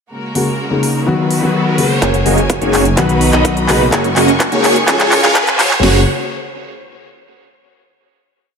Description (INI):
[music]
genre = EDM, festival progressive house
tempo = 126 BPM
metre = 4/4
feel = straight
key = F# major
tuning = A4 = 440 Hz
[part]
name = rich studio string section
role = sustained chords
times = 0.1-6.1 s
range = C#3 to C#6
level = -21 LUFS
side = equal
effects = sidechain pumping
[part]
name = riser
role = sound effects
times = 0.9-5.8 s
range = none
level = -23 LUFS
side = equal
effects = none
[part]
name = dark concert grand piano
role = accompaniment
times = 0.3-6.0 s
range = C#3 to G#4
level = -16 LUFS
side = left 3 dB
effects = sidechain pumping, ping-pong delay
[part]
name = pop drum kit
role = drums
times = 0.4-5.8 s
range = handclaps, hi-hat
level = -17 LUFS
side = equal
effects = none
[part]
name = supersaw chords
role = riff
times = 2.0-6.0 s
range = A#3 to E#5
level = -15 LUFS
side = right 2 dB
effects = phaser, sidechain pumping, low-pass filter, ping-pong delay
[part]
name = detuned saw bass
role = bass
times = 2.0-6.1 s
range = F#1 to C#2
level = -19 LUFS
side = equal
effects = sidechain pumping
[part]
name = big-room dance drum kit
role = drums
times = 2.0-5.9 s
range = hi-hat, kick drum, snare drum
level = -18 LUFS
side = equal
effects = overdrive, high-pass filter on kick, high-pass filter on snare, high-pass filter on hats
[sound]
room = moderate lush hall reverb, RT60 1.9 s, digital ambience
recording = high-pass filter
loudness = -11 LUFS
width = side -6 dB against mid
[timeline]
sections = 0.1-2.0 intro; 2.0-5.8 build; 5.8-7.7 final chord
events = riser 0.9-2.0, 2.0-5.8; build-up 2.0-5.8; drum fill 2.0-5.8; filter sweep on supersaw synth 2.0-5.8; filter sweep 2.0-5.8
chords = 0.1 F#add9; 1.1 B; 2.0 F#add9; 3.0 B; 3.9 F#add9; 4.9 C#; 5.8 F#add9